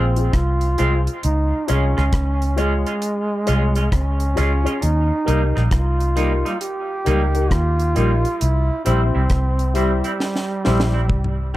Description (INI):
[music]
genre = roots reggae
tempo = 67 BPM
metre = 4/4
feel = swing 64% on 16ths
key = unclear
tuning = A4 = 438 Hz
[part]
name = clear trombone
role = melody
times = 0.0-11.4 s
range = G3 to G4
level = -24 LUFS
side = right 2 dB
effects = dub echo
[part]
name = clean electric guitar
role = accompaniment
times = 0.0-11.6 s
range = G3 to F4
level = -27 LUFS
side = right 2 dB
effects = dub echo
[part]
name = dark upright piano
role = stabs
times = 0.0-11.6 s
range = Eb4 to Db5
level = -26 LUFS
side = left 5 dB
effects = none
[part]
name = vintage muted fingered electric bass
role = bass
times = 0.0-11.5 s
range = Bb1 to Eb2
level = -18 LUFS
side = equal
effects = none
[part]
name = deep reggae drum kit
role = drums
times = 0.2-11.6 s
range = hi-hat, kick drum, rim click, snare drum, toms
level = -24 LUFS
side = equal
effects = none
[sound]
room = light reverb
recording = echo-heavy mix, faint mains hum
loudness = -17 LUFS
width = side -15 dB against mid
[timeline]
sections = 0.0-11.6 A section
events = drum fill 10.2-11.6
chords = 0.0 Fm; 1.2 Db; 4.8 Eb; 8.4 C